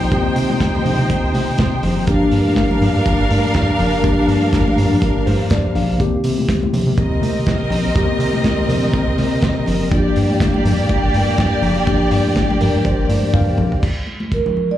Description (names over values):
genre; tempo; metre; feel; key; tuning
disco; 122 BPM; 4/4; swing 56% on 16ths; unclear; A4 = 440 Hz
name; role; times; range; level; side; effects
warm studio string section; second line; 0.0-13.8 s; Bb3 to G5; -21 LUFS; right 1 dB; slapback echo
mellow tine electric piano; accompaniment; 0.0-13.9 s; Eb3 to F5; -20 LUFS; left 3 dB; medium stereo tremolo, slapback echo
round analog bass; bass; 0.0-13.7 s; F#1 to C3; -19 LUFS; right 1 dB; none
warm soul drum kit; drums; 0.1-14.4 s; crash cymbal, handclaps, hi-hat, kick drum, snare drum, toms; -22 LUFS; right 1 dB; none
congas; percussion; 0.1-14.8 s; none; -25 LUFS; left 1 dB; slapback echo
vibraphone with soft mallets; melody; 14.3-14.8 s; Bb4 to D5; -19 LUFS; right 8 dB; none
room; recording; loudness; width
studio reverb; live gig heard through the venue's PA, club reverb; -14 LUFS; side -12 dB against mid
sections
0.0-13.8 A section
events
tine electric piano fill 5.0-6.0, 12.4-13.8; drum fill 13.3-13.8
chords
0.0 Cm7; 2.1 Gm7; 6.0 Cm7; 9.9 Gm7; 13.8 N.C.